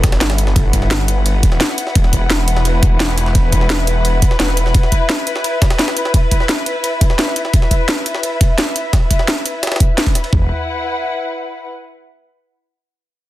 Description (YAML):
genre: dark technical drum and bass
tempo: 172 BPM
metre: 4/4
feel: straight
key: E minor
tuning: A4 = 441 Hz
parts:
  - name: snarling distorted saw bass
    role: bass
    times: 0.0-4.7, 10.3-10.5 s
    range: E1 to G1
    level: -16 LUFS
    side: equal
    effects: distortion, overdrive, sidechain pumping
  - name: drum and bass drum kit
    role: drums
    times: 0.0-10.4 s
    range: kick drum, toms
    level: -13 LUFS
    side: equal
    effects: overdrive
  - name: drum and bass drum kit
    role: drums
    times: 0.0-10.2 s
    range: hi-hat, snare drum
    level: -18 LUFS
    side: equal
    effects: overdrive
  - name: jungle sampler-style drum kit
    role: drums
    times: 0.0-10.3 s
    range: ride cymbal, snare drum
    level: -26 LUFS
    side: equal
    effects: high-pass filter on cymbals, high-pass filter on snare
  - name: muted studio string section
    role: texture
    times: 0.0-11.7 s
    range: E4 to F#5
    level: -21 LUFS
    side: left 2 dB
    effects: sidechain pumping
room: digital ambience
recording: dense, heavily limited modern master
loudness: -13 LUFS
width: side -15 dB against mid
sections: 0.0-10.3 A section; 10.3-11.7 B section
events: none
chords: 0.0 Em; 10.3 E5